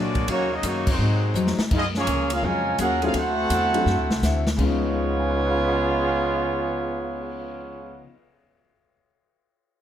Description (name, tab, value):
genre	jazz, big band swing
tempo	167 BPM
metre	4/4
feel	swing 65% on 8ths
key	Db mixolydian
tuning	A4 = 439 Hz
part	mellow trumpet section	melody	0.0-8.0 s	Ab3 to Ab5	-26 LUFS	right 1 dB	none
part	mellow trombone section	second line	0.0-8.0 s	Db3 to Gb4	-27 LUFS	right 2 dB	none
part	picked steel-string acoustic guitar	accompaniment	0.0-8.2 s	Ab2 to Ab4	-31 LUFS	left 5 dB	none
part	edgy saxophone section	sustained chords	0.0-1.7 s	C3 to F#4	-34 LUFS	left 2 dB	none
part	upright bass	bass	0.0-8.0 s	C2 to Bb2	-27 LUFS	equal	none
part	swinging big-band drum kit	drums	0.1-7.4 s	crash cymbal, cymbal swell, hi-hat, kick drum, ride cymbal, snare drum	-28 LUFS	equal	none
part	warm baby grand piano	accompaniment	3.0-9.1 s	Db3 to Cb7	-30 LUFS	left 4 dB	none
room	light reverb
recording	none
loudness	-20 LUFS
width	side -10 dB against mid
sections	0.0-1.7 A section; 1.7-4.6 B section; 4.6-7.4 C section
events	band accent 0.8; drum fill 1.4-1.7, 3.9-4.6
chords	0.3 Ebm7; 1.0 Ab7; 1.7 Gbmaj9; 3.1 D9; 4.6 Db9